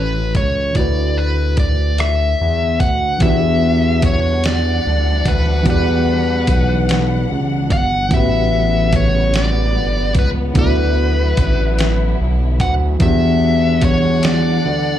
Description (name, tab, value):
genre	slow six-eight R&B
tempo	49 BPM (dotted quarters)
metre	6/8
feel	straight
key	E dorian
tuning	A4 = 440 Hz
part	dark smooth lead guitar	melody	0.0-15.0 s	B4 to F#5	-20 LUFS	left 1 dB	overdrive, slapback echo
part	bright reed electric piano	accompaniment	0.0-15.0 s	A2 to D5	-22 LUFS	right 2 dB	fast tremolo, slapback echo
part	smooth synth bass	bass	0.0-15.0 s	G1 to E2	-17 LUFS	equal	none
part	dusty soul sampler-style drum kit	drums	0.3-14.4 s	hi-hat, kick drum, rim click, snare drum	-18 LUFS	equal	none
part	dark studio string section	sustained chords	3.2-15.0 s	C#3 to F#5	-25 LUFS	left 1 dB	none
room	digital ambience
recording	live gig heard through the venue's PA, club reverb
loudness	-13 LUFS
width	side -11 dB against mid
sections	0.0-3.2 A section; 3.2-15.0 B section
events	none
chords	0.0 A13; 0.8 D69; 3.2 Em9; 8.1 A13; 10.6 D69; 13.0 Em9